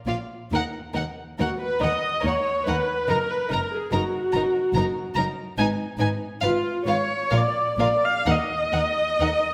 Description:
classical, slow romantic movement for string orchestra; 63-73 BPM; 3/4; rubato; Eb minor; A4 = 440 Hz
warm chamber violin section; melody; 0.1-9.3 s; F5 to Bb5; -33 LUFS; equal
warm chamber violin section; second line; 0.1-9.3 s; Eb4 to D5; -34 LUFS; equal
dark chamber double bass section; bass; 0.1-9.3 s; Gb1 to Eb2; -34 LUFS; equal
warm chamber cello section; bass; 0.1-9.3 s; Eb2 to Bb2; -33 LUFS; equal
warm chamber viola section; accompaniment; 1.4-9.5 s; F4 to F5; -26 LUFS; equal
wet recital hall reverb, RT60 1.7 s; -24 LUFS; mono
0.0-9.5 A section
0.0 Bb5; 0.5 N.C.; 3.1 Ebm/Gb (rootless); 5.6 N.C.; 6.4 Fm/Ab; 7.3 Bb; 8.3 N.C.

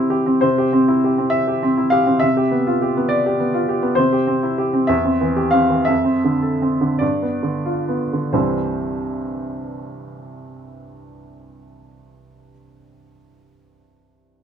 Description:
classical, romantic character piece for solo piano; 42-69 BPM (dotted quarters); 6/8; rubato; C major; A4 = 440 Hz
clear baby grand piano; solo; 0.0-14.4 s; C2 to F5; -17 LUFS; equal
moderate studio reverb, RT60 0.6 s; minimal, uncompressed stereo recording; -16 LUFS; side -8 dB against mid
0.4-8.3 A section; 8.3-13.3 B section
slowing down 3.1-8.3
0.4 C; 2.2 G7/C; 4.0 C; 4.9 C/E; 5.9 Dm7/F; 7.0 G7; 8.3 C

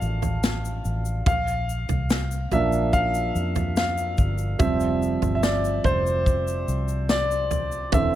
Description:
pop ballad; 72 BPM; 4/4; straight; F major; A4 = 440 Hz
warm upright piano; accompaniment; 0.0-8.2 s; D3 to A5; -24 LUFS; right 1 dB
vintage muted fingered electric bass; bass; 0.0-8.2 s; E1 to F2; -27 LUFS; equal
egg shaker; percussion; 0.0-8.1 s; -41 LUFS; left 12 dB
natural country drum kit; drums; 0.2-8.1 s; kick drum, snare drum, toms; -25 LUFS; equal
light reverb, studio reverb; -21 LUFS; side -12 dB against mid
0.0-8.2 A section
upright piano solo 0.0-8.2
0.0 Dm; 1.3 Bb; 4.6 Fsus2

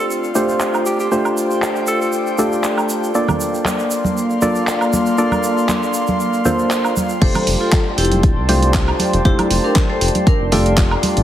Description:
deep house; 118 BPM; 4/4; swing 54% on 16ths; A4 = 440 Hz
bright alto saxophone; melody; 0.0-2.1 s; G4 to A4; -25 LUFS; equal; tape echo
warbly tape-like pad; sustained chords; 0.2-11.2 s; Bb3 to D6; -25 LUFS; left 1 dB; chorus, built-in reverb, vintage 12-bit sampler grit, sidechain pumping
percussive organ stab; stabs; 0.0-11.2 s; A3 to D5; -19 LUFS; equal; chorus, cassette tape, sidechain pumping, tape echo
airy breathy pad; texture; 0.0-7.2 s; Bb3 to C6; -24 LUFS; equal; chorus, sidechain pumping
tube shaker; percussion; 0.1-7.2 s; -30 LUFS; right 4 dB
house drum kit; drums; 0.6-11.2 s; crash cymbal, handclaps, hi-hat, woodblock; -22 LUFS; right 1 dB; low-pass filter on hats, low-pass filter on perc, low-pass filter on snare, low-pass filter on cymbals, low-pass filter on room
congas; percussion; 3.3-11.1 s; -24 LUFS; right 2 dB
vibraphone with hard mallets; melody; 7.2-10.7 s; D4 to D5; -22 LUFS; left 1 dB; vintage 12-bit sampler grit, tape echo
smooth synth bass; bass; 7.2-11.2 s; D1 to C2; -18 LUFS; equal; sidechain pumping
electronic kick drum; drums; 7.2-10.9 s; -15 LUFS; equal
moderate lush hall reverb, RT60 1.6 s, digital ambience; heavily compressed radio sound; -14 LUFS; side -11 dB against mid
0.0-7.2 A section; 7.2-11.2 B section
filter sweep on ambient pad 0.0-7.2; drop 7.2-11.2
0.0 F69; 3.1 Bbmaj7; 7.0 F69

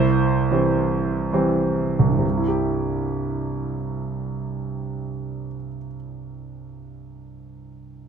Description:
classical, lyrical solo piano; 61-89 BPM; 3/4; rubato; C major; A4 = 440 Hz
warm baby grand piano; solo; 0.0-8.1 s; C2 to C5; -21 LUFS; right 2 dB
light reverb; close, detailed microphones; -21 LUFS; side -7 dB against mid
0.0-2.2 A section; 2.2-8.0 B section
slowing down 0.0-2.2
0.0 C

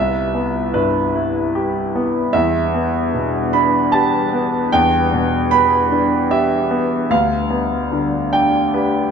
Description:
neoclassical piano and strings; 75 BPM; 3/4; rubato; E minor; A4 = 440 Hz
clear concert grand piano; accompaniment; 0.0-9.1 s; C2 to B5; -15 LUFS; right 1 dB
warbly tape-like pad; sustained chords; 0.0-9.1 s; G3 to D5; -24 LUFS; left 4 dB; chorus, built-in reverb
wet recital hall reverb, RT60 1.4 s; -15 LUFS; side -6 dB against mid
0.0-9.1 A section
0.0 Cmaj7; 2.3 Em7; 7.1 G7/D

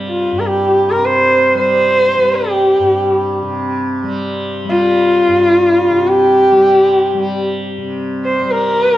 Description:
indian classical, Hindustani; free time; A4 = 438 Hz
tanpura; drone; 0.0-9.0 s; G2 to G3; -20 LUFS; equal
warm sarangi; melody; 0.1-9.0 s; F4 to C5; -11 LUFS; equal
wet recital hall reverb, RT60 1.3 s; dark, warm production; -11 LUFS; side -14 dB against mid
0.0-7.8 A section; 7.8-9.0 A section

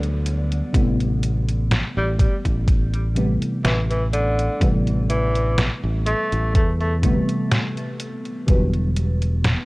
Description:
vaporwave; 62 BPM; 4/4; swing 53% on 16ths; A4 = 439 Hz
warm tenor saxophone; melody; 0.0-7.0 s; D3 to A3; -27 LUFS; equal; vintage 12-bit sampler grit, tape echo
mellow FM electric piano; accompaniment; 0.0-9.7 s; C3 to B3; -25 LUFS; equal; phaser, ensemble chorus, cassette tape, analog delay
fingered electric bass; bass; 0.0-9.6 s; E1 to E2; -22 LUFS; equal
detuned 8-bit digital drum machine; drums; 0.0-9.7 s; hi-hat, snare drum; -23 LUFS; equal; small room ambience
electronic kick drum; drums; 0.7-8.7 s; -19 LUFS; equal; small room ambience
light reverb, digital ambience; worn, warbling old tape, cassette tape, warbly pitch drift; -18 LUFS; side -23 dB against mid
0.0-9.7 A section
0.0 Em7; 0.7 Am9; 8.5 Em7

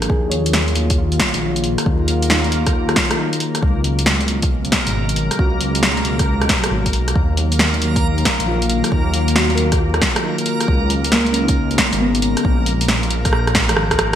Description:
future garage; 136 BPM; 4/4; swing 66% on 16ths; Eb minor; A4 = 440 Hz
muted felt-like synth keys; accompaniment; 0.0-12.9 s; Bb3 to Db5; -24 LUFS; equal; chorus, sidechain pumping, ping-pong delay
warbly tape-like pad; sustained chords; 0.0-14.2 s; Bb2 to F5; -23 LUFS; left 2 dB; chorus, built-in reverb, sidechain pumping
dark detuned saw bass; bass; 0.0-14.2 s; Ab1 to Eb2; -20 LUFS; equal; sidechain pumping
deep house drum kit; drums; 0.0-14.2 s; hi-hat, rim click, snare drum; -19 LUFS; equal; gated reverb
electronic kick drum; drums; 0.1-14.0 s; -20 LUFS; equal
backwards swelling texture; texture; 1.0-14.2 s; Bb3 to Bb4; -27 LUFS; right 1 dB; built-in reverb
moderate lush hall reverb, RT60 1.6 s; bright 1980s-style digital production, vinyl crackle; -15 LUFS; side -10 dB against mid
0.1-14.2 A section
drum fill 13.3-14.2
0.1 Ebmadd9; 3.6 Db7sus4; 7.2 Ebmadd9; 10.7 Db7sus4; 12.4 Bb5

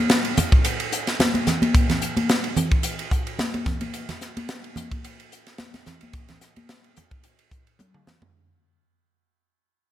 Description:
jazz; 109 BPM; 4/4; swing 55% on 16ths
crisp fusion drum kit; drums; 0.1-8.3 s; hi-hat, kick drum, ride cymbal, snare drum, toms; -21 LUFS; equal
congas; percussion; 0.4-8.3 s; -24 LUFS; equal
light reverb; -20 LUFS; side -12 dB against mid
0.0-8.3 A section
fade-out 0.0-8.3; drum fill 7.8-8.3

